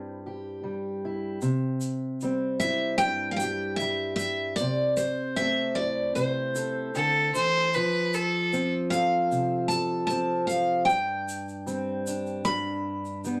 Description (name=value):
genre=acoustic folk duo or small band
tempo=76 BPM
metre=4/4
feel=straight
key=C major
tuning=A4 = 440 Hz
part: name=picked steel-string acoustic guitar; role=melody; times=0.0-13.2 s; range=C5 to B5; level=-29 LUFS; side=equal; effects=none
part: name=fingerpicked acoustic archtop guitar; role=accompaniment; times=0.0-13.4 s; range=G2 to A4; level=-32 LUFS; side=equal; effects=none
part: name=egg shaker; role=percussion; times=1.4-13.4 s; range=none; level=-44 LUFS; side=equal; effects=none
part: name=rich fiddle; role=second line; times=6.9-8.7 s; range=A4 to C5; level=-26 LUFS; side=equal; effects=none
room=wet studio ambience, RT60 0.5 s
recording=none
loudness=-27 LUFS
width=mono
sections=0.0-1.4 A section; 1.4-13.4 B section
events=none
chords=0.0 C; 4.6 Am/C; 7.7 F; 10.9 Gsus4; 12.5 G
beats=0.64 | 1.43 2.21 3.00 3.79 | 4.58 5.37 6.16 6.95 | 7.73 8.52 9.31 10.10 | 10.88 11.67 12.46 13.25